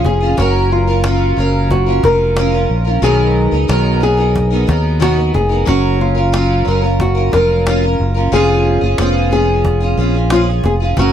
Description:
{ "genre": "acoustic pop", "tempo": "91 BPM", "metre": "4/4", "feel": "straight", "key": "F# major", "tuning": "A4 = 439 Hz", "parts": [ { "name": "nylon-string guitar", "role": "melody", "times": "0.0-11.1 s", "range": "E#4 to A#4", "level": "-17 LUFS", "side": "left 2 dB", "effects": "none" }, { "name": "picked steel-string acoustic guitar", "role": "accompaniment", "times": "0.0-11.1 s", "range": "B2 to A#4", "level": "-17 LUFS", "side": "right 1 dB", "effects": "double-tracked left and right" }, { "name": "fingered electric bass", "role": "bass", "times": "0.0-11.1 s", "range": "E#1 to D#2", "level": "-15 LUFS", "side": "equal", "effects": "none" }, { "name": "cajon", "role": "drums", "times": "0.0-11.1 s", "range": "none", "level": "-20 LUFS", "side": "equal", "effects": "none" } ], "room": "little or no reverb", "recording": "dry, close 1970s-style studio recording", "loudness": "-11 LUFS", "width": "side -9 dB against mid", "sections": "0.0-11.1 A section", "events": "none", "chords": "0.4 F#maj7; 3.0 Bmaj7; 5.7 F#maj7; 8.3 C#7/E#" }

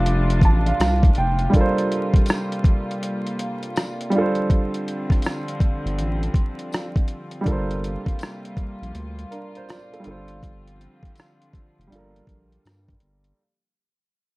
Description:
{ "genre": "lo-fi hip hop", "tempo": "81 BPM", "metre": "4/4", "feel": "swing 64% on 16ths", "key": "G minor", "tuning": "A4 = 439 Hz", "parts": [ { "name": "warm upright piano", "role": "accompaniment", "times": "0.0-13.4 s", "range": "G3 to A5", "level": "-26 LUFS", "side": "right 2 dB", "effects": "cassette tape, low-pass filter" }, { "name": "warm studio string section", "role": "sustained chords", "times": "0.0-13.4 s", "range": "C3 to F4", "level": "-30 LUFS", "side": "left 1 dB", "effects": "low-pass filter" }, { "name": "saturated sub bass", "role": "bass", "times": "0.0-13.3 s", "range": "F1 to G2", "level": "-23 LUFS", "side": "equal", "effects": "none" }, { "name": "boom bap sampler-style drum kit", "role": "drums", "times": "0.1-13.4 s", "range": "hi-hat, kick drum, rim click", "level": "-19 LUFS", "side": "equal", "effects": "none" }, { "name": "tambourine", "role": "percussion", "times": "0.8-12.9 s", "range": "none", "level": "-44 LUFS", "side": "left 2 dB", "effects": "none" } ], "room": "light reverb", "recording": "dark, warm production, vinyl crackle", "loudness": "-19 LUFS", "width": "side -22 dB against mid", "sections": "0.0-13.4 A section", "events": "fade-out 0.0-13.4; break 1.5-4.5", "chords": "0.0 Dm7; 1.5 Gm11; 4.1 Dm7; 7.5 Gm11; 10.1 Dm7/G; 11.9 Gm7" }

